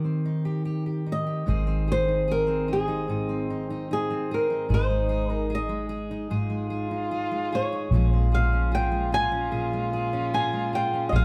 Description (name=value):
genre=acoustic folk-pop ballad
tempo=75 BPM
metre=4/4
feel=straight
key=unclear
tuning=A4 = 441 Hz
part: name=flamenco guitar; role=melody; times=0.0-11.2 s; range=Ab4 to Ab5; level=-29 LUFS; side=equal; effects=none
part: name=fingerpicked steel-string acoustic guitar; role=accompaniment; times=0.0-11.2 s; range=Ab2 to Ab4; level=-31 LUFS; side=equal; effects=none
part: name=clear French horn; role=second line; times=1.5-11.2 s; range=C4 to F4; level=-35 LUFS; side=equal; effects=none
part: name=vintage muted fingered electric bass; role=bass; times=1.5-11.2 s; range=Ab1 to Bb1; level=-28 LUFS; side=equal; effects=none
room=moderate studio reverb, RT60 0.5 s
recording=heard from further back in the room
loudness=-26 LUFS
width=mono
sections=0.0-1.5 A section; 1.5-11.2 B section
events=none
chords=0.0 Cm/Eb; 1.5 Ab; 4.7 Fm7/Ab; 7.9 Bbm7